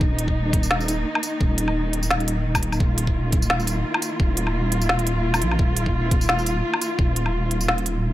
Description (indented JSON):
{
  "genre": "half-time drum and bass",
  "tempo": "172 BPM",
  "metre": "4/4",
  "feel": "swing 55% on 16ths, half-time",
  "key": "unclear",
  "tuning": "A4 = 440 Hz",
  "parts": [
    { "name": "dark symphonic cello section", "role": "sustained chords", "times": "0.0-8.1 s", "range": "Eb3 to F4", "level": "-26 LUFS", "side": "equal", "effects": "sidechain pumping" },
    { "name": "deep soft wobble bass", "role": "bass", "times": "0.0-8.1 s", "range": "Eb1 to Bb1", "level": "-24 LUFS", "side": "equal", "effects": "chorus, tube saturation" },
    { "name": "electronic kick drum", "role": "drums", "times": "0.0-7.1 s", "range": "none", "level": "-21 LUFS", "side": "equal", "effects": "overdrive" },
    { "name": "organic electronic drum kit", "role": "drums", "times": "0.2-7.9 s", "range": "hi-hat, snare drum, tambourine, woodblock", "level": "-24 LUFS", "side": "equal", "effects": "overdrive" }
  ],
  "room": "little or no reverb",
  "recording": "none",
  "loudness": "-19 LUFS",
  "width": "side -14 dB against mid",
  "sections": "0.0-8.1 A section",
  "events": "none",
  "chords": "0.0 Eb5",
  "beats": "| 0.01 0.36 0.71 1.06 | 1.41 1.75 2.10 2.45 | 2.80 3.15 3.50 3.85 | 4.20 4.54 4.89 5.24 | 5.59 5.94 6.29 6.64 | 6.99 7.34 7.68 8.03"
}